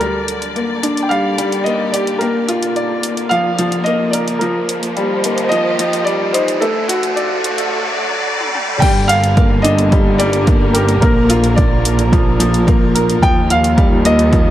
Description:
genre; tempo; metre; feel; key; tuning
piano and strings electronica; 109 BPM; 4/4; straight; G minor; A4 = 440 Hz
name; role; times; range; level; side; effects
felt-muted upright piano; melody; 0.0-14.5 s; A4 to G5; -19 LUFS; right 1 dB; none
dark symphonic string section; sustained chords; 0.0-14.5 s; D3 to Eb5; -23 LUFS; equal; sidechain pumping
clear upright piano; riff; 0.0-14.5 s; F3 to D5; -17 LUFS; left 1 dB; digital delay
deep house drum kit; drums; 0.0-14.4 s; crash cymbal, hi-hat, toms; -23 LUFS; right 1 dB; overdrive, low-pass filter on hats, low-pass filter on toms, low-pass filter on cymbals
riser; sound effects; 1.8-8.8 s; none; -25 LUFS; equal; none
bright studio double bass section; bass; 8.8-14.5 s; G1 to Eb2; -16 LUFS; right 1 dB; sidechain pumping
electronic kick drum; drums; 8.8-14.4 s; none; -14 LUFS; equal; overdrive
room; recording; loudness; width
light reverb, small room ambience; high-pass filter; -12 LUFS; side -12 dB against mid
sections
0.0-8.8 A section; 8.8-14.5 B section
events
build-up 0.0-8.8; riser 1.8-8.8; drum fill 8.4-8.8; drop 8.8-14.5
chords
0.0 Gm; 2.2 Bb; 4.4 Ebadd9; 6.6 D; 8.8 Gm; 11.0 Bb; 13.2 Ebadd9

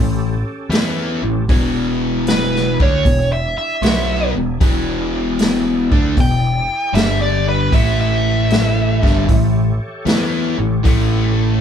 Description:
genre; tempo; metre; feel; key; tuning
blues rock power trio and southern rock; 77 BPM; 4/4; swing 68% on 8ths; unclear; A4 = 440 Hz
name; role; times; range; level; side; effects
overdriven tonewheel organ; sustained chords; 0.0-11.6 s; C#4 to D5; -32 LUFS; right 2 dB; slow rotary speaker, chorus vibrato
overdriven electric guitar; riff; 0.0-11.6 s; E2 to E4; -18 LUFS; left 1 dB; none
growling picked electric bass; bass; 0.0-11.6 s; E1 to E2; -20 LUFS; equal; overdrive
vintage drum kit; drums; 0.7-11.1 s; hi-hat, kick drum, snare drum; -17 LUFS; equal; none
nasal lead guitar with a parked wah; melody; 2.3-10.3 s; B4 to G5; -20 LUFS; equal; overdrive
room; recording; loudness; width
moderate small room reverb, RT60 0.5 s; band playing live in one room; -14 LUFS; side -8 dB against mid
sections
0.0-11.6 A section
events
none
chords
0.0 A7; 1.5 E7; 6.9 G5; 7.7 A7

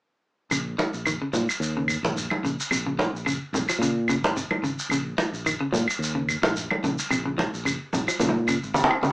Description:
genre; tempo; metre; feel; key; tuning
afrobeat; 109 BPM; 4/4; swing 54% on 16ths; Bb minor; A4 = 438 Hz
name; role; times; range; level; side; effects
clean electric guitar; arpeggios; 0.5-9.1 s; C3 to F3; -29 LUFS; left 1 dB; none
fingered electric bass; bass; 0.5-9.1 s; Ab1 to Bb2; -29 LUFS; equal; none
claves; percussion; 0.5-9.0 s; none; -27 LUFS; right 1 dB; none
shekere; percussion; 0.5-9.1 s; none; -32 LUFS; equal; none
congas; percussion; 0.8-9.1 s; none; -24 LUFS; right 1 dB; none
room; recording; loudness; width
moderate studio ambience, RT60 0.5 s; small speaker sound; -23 LUFS; side -24 dB against mid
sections
0.5-9.1 A section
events
drum fill 8.2-9.1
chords
0.5 Bbm; 2.7 Dbmaj7(no3)/Bb; 4.9 Bbm; 7.1 Db5/Bb

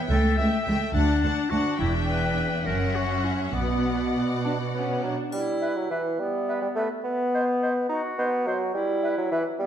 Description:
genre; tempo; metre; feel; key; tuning
cinematic, playful, whimsical film cue; 70 BPM (dotted quarters); 6/8; straight; B minor, E minor from 5.3 s; A4 = 441 Hz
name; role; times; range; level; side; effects
warm studio violin section; melody; 0.0-5.1 s; F#5 to A5; -34 LUFS; left 4 dB; none
rich chamber violin section; second line; 0.0-5.1 s; D5 to F#5; -36 LUFS; left 5 dB; none
rich studio viola section; accompaniment; 0.0-5.3 s; A3 to D4; -30 LUFS; equal; none
bright clarinet; second line; 0.1-9.7 s; B3 to E5; -30 LUFS; left 3 dB; none
rich studio double bass section; bass; 0.1-4.1 s; E1 to D2; -28 LUFS; right 2 dB; none
warm chamber cello section; bass; 0.1-5.1 s; C#2 to B2; -29 LUFS; right 2 dB; none
clear bassoon; accompaniment; 4.4-9.7 s; E3 to D#4; -26 LUFS; right 1 dB; none
triangle; percussion; 5.3-6.4 s; none; -46 LUFS; left 2 dB; none
clear oboe; second line; 5.6-9.4 s; B4 to C5; -36 LUFS; right 2 dB; none
mellow hollow concert flute; second line; 5.6-9.4 s; D#5 to E5; -35 LUFS; left 3 dB; none
room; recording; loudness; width
moderate scoring stage reverb, RT60 1.6 s; dark, warm production; -23 LUFS; side -9 dB against mid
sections
0.0-5.3 A section; 5.3-9.7 B section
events
none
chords
0.1 A7/C#; 0.9 D; 1.8 Em7; 2.7 F#5; 3.5 Bm; 5.3 E5; 7.0 B5; 8.7 E5

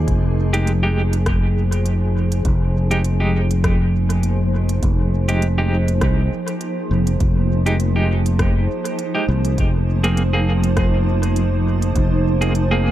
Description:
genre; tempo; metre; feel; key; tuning
ambient dub; 101 BPM; 4/4; swing 55% on 16ths; F minor; A4 = 445 Hz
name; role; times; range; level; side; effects
granular cloud pad; sustained chords; 0.0-12.9 s; F3 to C5; -24 LUFS; right 1 dB; built-in reverb
fingered electric bass; bass; 0.0-12.9 s; F1 to C2; -17 LUFS; equal; tube saturation
electronic kick drum; drums; 0.1-12.1 s; none; -21 LUFS; equal; overdrive, studio reverb
organic electronic drum kit; drums; 0.1-12.7 s; hi-hat, rim click; -31 LUFS; equal; overdrive, studio reverb, dub echo
clean electric guitar; stabs; 0.5-12.9 s; Ab3 to Ab4; -26 LUFS; right 1 dB; tremolo, dub echo
room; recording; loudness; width
digital ambience; dark, warm production; -16 LUFS; side -13 dB against mid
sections
0.0-12.9 A section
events
none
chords
0.1 Fm9; 9.6 Abadd9/F

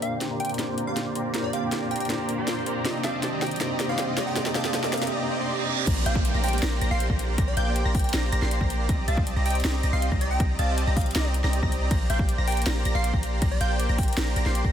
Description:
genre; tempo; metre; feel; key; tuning
future bass; 159 BPM; 4/4; half-time; Bb major; A4 = 439 Hz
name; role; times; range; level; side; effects
plucky unison lead; melody; 0.0-14.1 s; D5 to G5; -33 LUFS; equal; sidechain pumping, ping-pong delay
mellow tine electric piano; accompaniment; 0.0-5.9 s; Bb2 to C5; -32 LUFS; left 1 dB; medium tremolo, sidechain pumping, digital delay
airy breathy pad; sustained chords; 0.0-5.1 s; D3 to G4; -36 LUFS; right 1 dB; chorus, sidechain pumping
supersaw chords; riff; 0.0-14.7 s; Bb3 to C6; -30 LUFS; right 1 dB; vintage 12-bit sampler grit, sidechain pumping, low-pass filter, digital delay
trap drum kit; drums; 0.0-14.6 s; crash cymbal, hi-hat, snare drum; -31 LUFS; equal; none
riser, reverse cymbal and downlifter; sound effects; 2.7-8.9 s; none; -35 LUFS; right 4 dB; none
wide unison pluck; arpeggios; 5.9-14.7 s; G6 to C7; -35 LUFS; right 1 dB; sidechain pumping, digital delay
warm 808-style bass; bass; 5.9-14.7 s; Bb1 to C2; -25 LUFS; equal; tube saturation, sidechain pumping
electronic kick drum; drums; 5.9-14.7 s; none; -26 LUFS; equal; overdrive
room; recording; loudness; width
light reverb; dense, heavily limited modern master; -23 LUFS; side -9 dB against mid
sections
0.0-5.9 A section; 5.9-14.7 B section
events
build-up 0.0-5.9; drum fill 0.0-5.1; filter sweep on supersaw synth 0.0-5.9; filter sweep on analog synth pad 0.0-5.9; reverse cymbal 5.1-5.9; drop 5.9-14.7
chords
0.0 Bb69; 2.9 Cm7; 5.9 Bb69; 8.9 Cm7; 11.9 Bb69

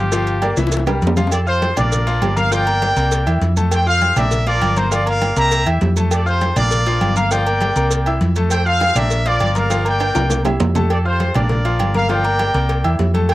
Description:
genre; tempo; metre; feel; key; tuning
latin, salsa; 200 BPM; 4/4; straight; F major; A4 = 440 Hz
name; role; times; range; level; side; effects
warm trumpet; melody; 0.0-0.6 s; G4; -22 LUFS; equal; cassette tape
bright grand piano; accompaniment; 0.0-13.3 s; E3 to F6; -23 LUFS; left 2 dB; none
hollow-body short-scale fingered electric bass; bass; 0.0-13.3 s; G1 to F2; -18 LUFS; equal; none
agogo bells and timbales; percussion; 0.1-13.3 s; none; -26 LUFS; right 5 dB; none
congas; percussion; 0.1-13.3 s; none; -26 LUFS; left 1 dB; none
cowbell and bongos; percussion; 0.1-13.3 s; none; -27 LUFS; left 4 dB; none
maracas; percussion; 0.1-10.9 s; none; -30 LUFS; right 6 dB; none
bright trumpet section; melody; 1.3-13.3 s; F4 to Bb5; -19 LUFS; equal; cassette tape
room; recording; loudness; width
light reverb; home recording on cassette; -14 LUFS; side -16 dB against mid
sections
0.0-1.3 A section; 1.3-10.9 B section; 10.9-13.3 B section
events
trumpet solo 0.0-1.3; drum fill 0.6-1.3, 9.7-10.9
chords
0.1 Gm7; 0.7 C7; 1.3 Fadd9; 1.9 Bb; 2.5 Gm7; 3.1 C7; 3.7 F; 4.3 Bb; 4.9 Gm7; 5.5 C7; 6.1 Fadd9; 6.7 Bb; 7.3 Gm7; 7.9 C7; 8.5 F; 9.1 Bb; 9.7 Gm7; 10.3 C7; 10.9 Fadd9; 11.5 Bb; 12.1 Gm7; 12.7 C7

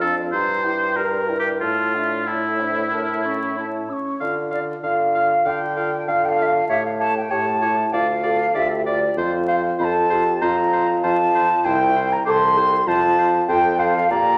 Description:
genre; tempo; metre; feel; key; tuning
quick classical-period movement for wind quintet; 96 BPM; 4/4; rubato; D minor; A4 = 439 Hz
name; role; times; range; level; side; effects
wooden flute; melody; 0.0-14.4 s; D5 to E6; -23 LUFS; equal; none
clear oboe; second line; 0.0-14.4 s; E4 to F5; -27 LUFS; equal; none
mellow clarinet; accompaniment; 0.0-14.4 s; E4 to D5; -32 LUFS; equal; none
warm French horn; accompaniment; 0.0-14.4 s; C#4 to A4; -28 LUFS; equal; none
warm bassoon; bass; 0.0-14.4 s; C2 to D3; -28 LUFS; equal; none
room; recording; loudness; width
wet recital hall reverb, RT60 1.4 s; vinyl crackle; -20 LUFS; mono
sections
0.0-4.2 A section; 4.2-14.4 B section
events
none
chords
0.3 Edim/G; 1.6 Asus4; 2.9 A; 4.2 Dm; 6.7 A7; 7.9 Dm; 9.2 F; 11.7 C; 12.9 F

